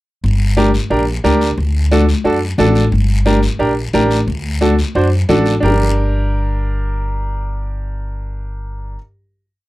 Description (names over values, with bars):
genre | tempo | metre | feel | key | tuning
latin, cumbia | 178 BPM | 4/4 | straight | G harmonic minor | A4 = 440 Hz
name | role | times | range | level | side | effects
upright bass | bass | 0.2-8.9 s | G1 to F#2 | -16 LUFS | equal | none
congas | percussion | 0.2-5.7 s | none | -20 LUFS | left 4 dB | none
guiro | percussion | 0.2-5.7 s | none | -29 LUFS | left 5 dB | none
bright upright piano | accompaniment | 0.6-9.0 s | D4 to C5 | -17 LUFS | right 2 dB | none
room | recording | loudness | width
light reverb | dry, close 1970s-style studio recording | -13 LUFS | side -18 dB against mid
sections
0.2-5.6 groove; 5.6-8.3 final chord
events
none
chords
0.2 Gm; 1.6 D; 2.9 Gm; 4.3 D; 5.6 Gm